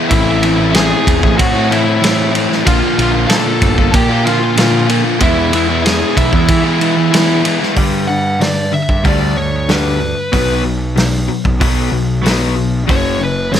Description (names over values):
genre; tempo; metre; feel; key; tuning
quiet-loud alternative rock; 94 BPM; 4/4; straight; unclear; A4 = 439 Hz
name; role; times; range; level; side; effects
crunchy overdriven guitar; riff; 0.0-7.8 s; A2 to E#4; -19 LUFS; right 13 dB; none
overdriven electric guitar; riff; 0.0-13.6 s; F#2 to E#4; -18 LUFS; left 12 dB; none
fuzz lead guitar; melody; 0.1-13.6 s; E4 to A5; -18 LUFS; right 1 dB; distortion
fuzz picked electric bass; bass; 0.1-13.6 s; F#1 to E3; -17 LUFS; right 1 dB; overdrive
loose indie drum kit; drums; 0.1-13.6 s; hi-hat, kick drum, ride cymbal, snare drum; -16 LUFS; right 1 dB; none
twelve-string electric guitar; arpeggios; 7.8-13.6 s; F#2 to B3; -22 LUFS; right 4 dB; none
room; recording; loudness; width
light reverb; none; -11 LUFS; side -9 dB against mid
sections
0.0-7.8 A section; 7.8-13.6 B section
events
lead electric guitar solo 7.8-13.6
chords
0.1 Am; 2.7 A#; 5.2 E; 7.8 G; 10.3 B5; 12.9 F#5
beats
| 0.10 0.74 1.38 2.02 | 2.65 3.29 3.93 4.57 | 5.21 5.84 6.48 7.12 | 7.76 8.40 9.04 9.68 | 10.32 10.96 11.60 12.24 | 12.88 13.53